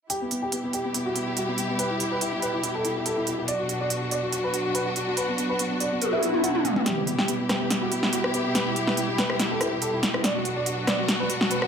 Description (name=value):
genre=heavy wobble dubstep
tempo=142 BPM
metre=4/4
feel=swing 54% on 16ths, half-time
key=E minor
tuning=A4 = 440 Hz
part: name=dark baby grand piano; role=melody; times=0.1-11.7 s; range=B3 to F#5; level=-28 LUFS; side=equal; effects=ping-pong delay
part: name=rich studio string section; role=sustained chords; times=0.1-11.7 s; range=B2 to G4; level=-29 LUFS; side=left 1 dB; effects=none
part: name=big-room dance drum kit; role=drums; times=0.1-11.7 s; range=hi-hat, rim click, snare drum, toms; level=-26 LUFS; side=equal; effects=overdrive
part: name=swell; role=sound effects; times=6.2-6.9 s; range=none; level=-29 LUFS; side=left 4 dB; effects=none
room=light reverb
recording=none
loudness=-23 LUFS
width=side -7 dB against mid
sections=0.1-6.9 A section; 6.9-11.7 B section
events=drum fill 6.0-6.9, 6.9-11.7; swell 6.2-6.9; build-up 6.9-11.7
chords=0.1 Em; 3.5 Bm; 6.9 Em; 10.2 Bm